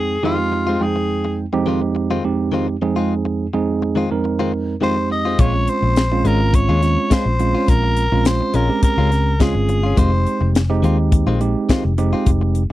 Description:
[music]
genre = straight-eighth soul blues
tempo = 105 BPM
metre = 4/4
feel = swing 53% on 16ths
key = F minor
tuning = A4 = 441 Hz
[part]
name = growling tenor saxophone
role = melody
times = 0.0-1.4, 4.8-10.5 s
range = F4 to Eb5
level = -21 LUFS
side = left 1 dB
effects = none
[part]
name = tine electric piano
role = accompaniment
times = 0.0-12.6 s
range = F2 to G5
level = -20 LUFS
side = right 4 dB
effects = none
[part]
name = direct-recorded clean electric guitar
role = stabs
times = 0.2-12.5 s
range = Eb3 to F4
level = -23 LUFS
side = left 5 dB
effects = none
[part]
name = vintage muted fingered electric bass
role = bass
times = 5.4-12.7 s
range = F1 to Eb2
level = -18 LUFS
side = left 1 dB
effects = none
[part]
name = tight funk drum kit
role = drums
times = 5.4-12.7 s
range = hi-hat, kick drum, snare drum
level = -17 LUFS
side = left 1 dB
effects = none
[sound]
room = little or no reverb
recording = dry, close 1970s-style studio recording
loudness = -15 LUFS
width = side -15 dB against mid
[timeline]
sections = 0.0-12.7 A section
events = none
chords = 0.0 Fm7; 5.4 Bbm7; 10.0 Fm7

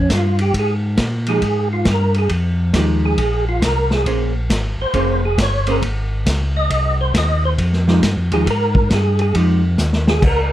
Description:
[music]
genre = soul jazz organ trio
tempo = 136 BPM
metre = 4/4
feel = swing 65% on 8ths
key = F minor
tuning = A4 = 440 Hz
[part]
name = percussive tonewheel organ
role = melody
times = 0.0-10.5 s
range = Db4 to Eb5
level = -20 LUFS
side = right 1 dB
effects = slow rotary speaker, chorus vibrato, plate reverb
[part]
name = mellow tonewheel organ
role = bass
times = 0.0-10.5 s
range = F1 to Bb2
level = -18 LUFS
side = equal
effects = overdrive, chorus vibrato, slow rotary speaker
[part]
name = vintage drum kit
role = drums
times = 0.1-10.4 s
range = crash cymbal, hi-hat, kick drum, ride cymbal, snare drum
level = -21 LUFS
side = equal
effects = none
[part]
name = archtop guitar, miked and amplified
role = accompaniment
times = 1.3-9.6 s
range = F3 to C5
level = -19 LUFS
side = right 2 dB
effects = none
[sound]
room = light reverb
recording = dark, warm production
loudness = -15 LUFS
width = side -13 dB against mid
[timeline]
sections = 0.0-10.5 A section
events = tonewheel organ solo 0.0-10.5; drum fill 9.8-10.2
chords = 0.0 Fm9; 3.2 Bbm9; 6.7 Fm9

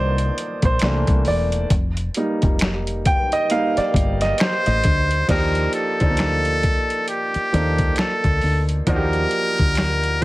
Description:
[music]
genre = R&B, neo-soul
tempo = 67 BPM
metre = 4/4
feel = swing 60% on 16ths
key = unclear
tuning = A4 = 440 Hz
[part]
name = clear baby grand piano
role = accompaniment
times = 0.0-10.2 s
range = Eb3 to G5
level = -22 LUFS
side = right 1 dB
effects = plate reverb
[part]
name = deep dub fingered electric bass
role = bass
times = 0.0-10.2 s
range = E1 to Eb2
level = -22 LUFS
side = equal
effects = none
[part]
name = boom bap sampler-style drum kit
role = drums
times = 0.2-10.2 s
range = crash cymbal, finger snaps, hi-hat, kick drum, snare drum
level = -21 LUFS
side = equal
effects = none
[part]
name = trumpet with metal mute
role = melody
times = 4.4-10.2 s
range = G4 to C5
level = -22 LUFS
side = equal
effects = none
[sound]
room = light reverb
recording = heavily compressed radio sound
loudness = -17 LUFS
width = side -18 dB against mid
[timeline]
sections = 0.0-5.3 A section; 5.3-10.2 B section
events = grand piano solo 0.0-5.3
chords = 0.0 Cm11; 0.8 C13; 1.7 F9sus4; 5.3 Ebmaj9#11

